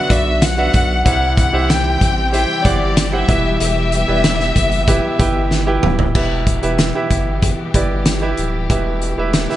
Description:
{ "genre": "piano-driven pop", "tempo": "94 BPM", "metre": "4/4", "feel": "straight", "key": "E minor", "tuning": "A4 = 439 Hz", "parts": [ { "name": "warm studio violin section", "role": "melody", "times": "0.0-5.5 s", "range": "D5 to G5", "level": "-19 LUFS", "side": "left 2 dB", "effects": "none" }, { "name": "clear concert grand piano", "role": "accompaniment", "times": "0.0-9.6 s", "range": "B2 to G5", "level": "-20 LUFS", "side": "right 2 dB", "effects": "none" }, { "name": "warm studio string section", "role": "sustained chords", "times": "0.0-9.6 s", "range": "D3 to G4", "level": "-26 LUFS", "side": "left 2 dB", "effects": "none" }, { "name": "saturated sub bass", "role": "bass", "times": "0.1-9.5 s", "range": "D1 to C2", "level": "-20 LUFS", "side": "equal", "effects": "none" }, { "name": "loose indie drum kit", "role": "drums", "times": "0.1-9.6 s", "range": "crash cymbal, hi-hat, kick drum, snare drum, toms", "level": "-17 LUFS", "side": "equal", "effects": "none" } ], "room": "light reverb, studio ambience", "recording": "nothing above 10.7 kHz", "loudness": "-14 LUFS", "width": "side -13 dB against mid", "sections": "0.0-6.2 A section; 6.2-9.6 B section", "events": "drum fill 5.5-6.2", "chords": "0.0 Bm; 1.1 C; 3.3 Em" }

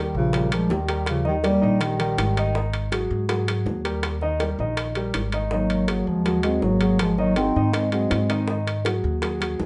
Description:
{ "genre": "Afro-Cuban jazz", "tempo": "162 BPM", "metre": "4/4", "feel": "straight", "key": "unclear", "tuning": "A4 = 438 Hz", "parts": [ { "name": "breathy bass clarinet", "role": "melody", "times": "0.0-2.7, 5.5-8.6 s", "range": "Db3 to C4", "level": "-26 LUFS", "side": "equal", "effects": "none" }, { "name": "breathy trombone", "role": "second line", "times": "0.0-2.5, 5.5-8.6 s", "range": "F3 to Eb4", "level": "-32 LUFS", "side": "equal", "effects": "none" }, { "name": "warm grand piano", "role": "accompaniment", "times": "0.0-9.7 s", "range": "Eb3 to Eb5", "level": "-30 LUFS", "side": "equal", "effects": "none" }, { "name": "upright bass", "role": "bass", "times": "0.0-9.7 s", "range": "Ab1 to Ab2", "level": "-29 LUFS", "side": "equal", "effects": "none" }, { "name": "bongos", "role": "percussion", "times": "0.3-9.7 s", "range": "none", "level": "-35 LUFS", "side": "equal", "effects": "none" }, { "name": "timbales", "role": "percussion", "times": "0.3-9.6 s", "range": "none", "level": "-33 LUFS", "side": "equal", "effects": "none" } ], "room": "moderate studio reverb, RT60 0.6 s", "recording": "nothing above 10.5 kHz", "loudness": "-23 LUFS", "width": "mono", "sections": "0.0-9.7 A section", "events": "none", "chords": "0.0 Eb9; 2.6 Absus2; 4.0 Eb; 5.5 Ab9" }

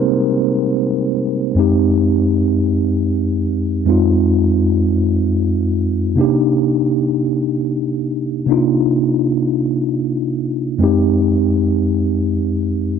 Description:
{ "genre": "R&B", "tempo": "52 BPM (dotted quarters)", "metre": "6/8", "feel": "straight", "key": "unclear", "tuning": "A4 = 441 Hz", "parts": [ { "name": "mellow tine electric piano", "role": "solo", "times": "0.0-13.0 s", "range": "F2 to C5", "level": "-14 LUFS", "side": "equal", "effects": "medium stereo tremolo" } ], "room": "little or no reverb", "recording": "dry, close 1970s-style studio recording", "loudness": "-14 LUFS", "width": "side -7 dB against mid", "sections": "0.0-1.6 A section; 1.6-13.0 B section", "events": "tine electric piano solo 0.0-1.6", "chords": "0.0 Cm7; 1.6 Fm7; 6.2 Cm7; 10.8 Fm7" }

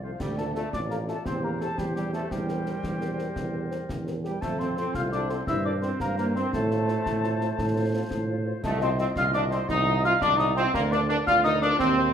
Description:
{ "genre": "military-style march for wind band", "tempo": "114 BPM (dotted quarters)", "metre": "6/8", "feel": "straight", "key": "F major, Bb major from 8.6 s", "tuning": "A4 = 440 Hz", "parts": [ { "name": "mellow cornet", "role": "melody", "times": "0.0-12.1 s", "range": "F4 to F5", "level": "-36 LUFS", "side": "right 1 dB", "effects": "none" }, { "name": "mellow hollow piccolo", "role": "second line", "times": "0.0-12.1 s", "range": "F5 to F6", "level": "-30 LUFS", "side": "left 5 dB", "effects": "none" }, { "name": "warm woodwind section", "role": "second line", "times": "0.0-12.1 s", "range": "F4 to Eb5", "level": "-36 LUFS", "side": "left 1 dB", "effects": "none" }, { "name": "dark French horn section", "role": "accompaniment", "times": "0.0-12.0 s", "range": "F3 to Eb5", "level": "-35 LUFS", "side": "left 4 dB", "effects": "none" }, { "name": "warm trombone section", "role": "sustained chords", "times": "0.0-12.1 s", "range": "F3 to F4", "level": "-29 LUFS", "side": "right 2 dB", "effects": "none" }, { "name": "clear tuba", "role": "bass", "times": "0.0-12.1 s", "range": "A1 to A2", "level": "-29 LUFS", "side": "right 2 dB", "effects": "none" }, { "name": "concert snare drum, clash cymbals and concert bass drum", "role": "drums", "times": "0.2-12.0 s", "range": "none", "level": "-36 LUFS", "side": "left 1 dB", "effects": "none" } ], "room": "wet large studio reverb, RT60 0.8 s", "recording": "minimal, uncompressed stereo recording", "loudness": "-24 LUFS", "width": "side -8 dB against mid", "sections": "0.2-12.1 A section", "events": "none", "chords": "0.2 Dm; 1.3 C/E; 2.3 C7/E; 4.4 F; 5.5 C7/G; 6.5 F/A; 8.6 F5/C; 10.7 Bb/D" }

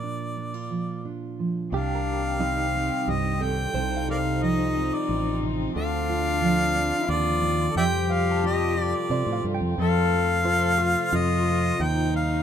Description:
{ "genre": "acoustic folk-pop ballad", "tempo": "89 BPM", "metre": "3/4", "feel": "straight", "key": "unclear", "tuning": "A4 = 440 Hz", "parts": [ { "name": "clear harmonica", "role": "melody", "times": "0.0-12.4 s", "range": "Bb4 to G5", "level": "-27 LUFS", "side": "equal", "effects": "none" }, { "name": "fingerpicked steel-string acoustic guitar", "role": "accompaniment", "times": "0.0-12.4 s", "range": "G2 to C5", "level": "-29 LUFS", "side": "right 4 dB", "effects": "none" }, { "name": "warm cello", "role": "second line", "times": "1.7-12.4 s", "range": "C4 to A4", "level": "-29 LUFS", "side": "left 6 dB", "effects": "none" }, { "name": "warm chamber string section", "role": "sustained chords", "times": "1.7-12.4 s", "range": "C3 to G4", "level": "-35 LUFS", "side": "left 1 dB", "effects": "none" }, { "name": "direct-recorded clean electric guitar", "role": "arpeggios", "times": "1.7-12.1 s", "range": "Eb4 to A5", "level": "-35 LUFS", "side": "right 5 dB", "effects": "tremolo" }, { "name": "fingered electric bass", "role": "bass", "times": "1.7-12.4 s", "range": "A1 to C3", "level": "-27 LUFS", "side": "equal", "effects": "none" } ], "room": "light reverb", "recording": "minimal, uncompressed stereo recording", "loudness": "-22 LUFS", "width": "side -8 dB against mid", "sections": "0.0-1.7 A section; 1.7-12.4 B section", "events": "none", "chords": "0.0 Bb; 1.7 Cm; 3.7 Fadd9/C; 5.8 Dm; 7.8 Fadd9; 11.8 Cm/Eb" }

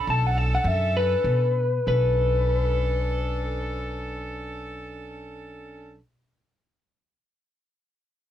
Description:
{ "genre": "blues", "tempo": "94 BPM", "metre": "4/4", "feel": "swing 56% on 16ths", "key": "B minor", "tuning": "A4 = 440 Hz", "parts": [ { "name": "electric guitar through a small old amp", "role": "melody", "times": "0.0-6.0 s", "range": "B4 to A5", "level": "-25 LUFS", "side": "left 2 dB", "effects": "none" }, { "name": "bright horn section", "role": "sustained chords", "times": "0.0-6.0 s", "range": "C#4 to A4", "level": "-34 LUFS", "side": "right 1 dB", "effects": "none" }, { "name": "upright bass", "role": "bass", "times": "0.1-6.0 s", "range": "B1 to B2", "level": "-25 LUFS", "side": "equal", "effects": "none" } ], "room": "little or no reverb", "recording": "dry, close 1970s-style studio recording", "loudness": "-22 LUFS", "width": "side -11 dB against mid", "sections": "0.0-1.9 A section; 1.9-7.0 B section", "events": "slowing down 0.0-1.9", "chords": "0.0 Bm9" }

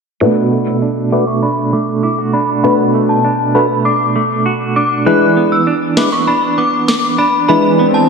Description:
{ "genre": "dancehall", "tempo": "99 BPM", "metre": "4/4", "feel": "straight", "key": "B dorian", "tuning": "A4 = 439 Hz", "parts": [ { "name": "synth chime", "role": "melody", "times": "0.2-8.1 s", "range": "A5 to F#6", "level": "-16 LUFS", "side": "left 2 dB", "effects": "ensemble chorus, low-pass filter, diffuse ambient delay" }, { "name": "percussive organ stab", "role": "accompaniment", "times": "0.2-8.0 s", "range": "G#3 to B4", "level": "-15 LUFS", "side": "left 2 dB", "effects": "chorus, phaser, low-pass filter" }, { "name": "clean electric guitar", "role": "arpeggios", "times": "0.2-8.1 s", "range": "B2 to F#4", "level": "-15 LUFS", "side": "right 4 dB", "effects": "tremolo, low-pass filter, diffuse ambient delay" }, { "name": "electronic snare drum", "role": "drums", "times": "6.0-7.0 s", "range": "none", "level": "-19 LUFS", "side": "left 1 dB", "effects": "vintage 12-bit sampler grit" }, { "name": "swell", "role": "sound effects", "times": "7.7-8.1 s", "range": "none", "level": "-15 LUFS", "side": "left 1 dB", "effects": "none" } ], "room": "wet lush hall reverb, RT60 1.9 s", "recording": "dreamy mix soaked in reverb", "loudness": "-11 LUFS", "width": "side -5 dB against mid", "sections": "0.2-8.1 A section", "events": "filter sweep 0.2-8.1; swell 7.7-8.1", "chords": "0.2 Bm7; 5.1 E7" }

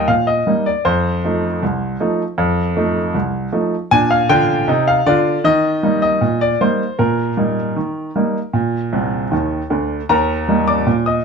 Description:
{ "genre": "ragtime piano", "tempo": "78 BPM", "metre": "2/4", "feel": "straight", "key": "Eb major", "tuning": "A4 = 442 Hz", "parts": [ { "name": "clear baby grand piano", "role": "solo", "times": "0.0-11.2 s", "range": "C2 to Eb6", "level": "-15 LUFS", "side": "equal", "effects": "none" } ], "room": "moderate studio ambience, RT60 0.5 s", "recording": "dark, warm production", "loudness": "-15 LUFS", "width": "side -5 dB against mid", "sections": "0.0-10.1 A section; 10.1-11.2 A section", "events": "grand piano fill 8.9-10.1", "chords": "0.0 Eb; 0.8 F7; 3.9 Bb; 5.4 Eb/Bb; 8.5 Bb; 10.1 Eb" }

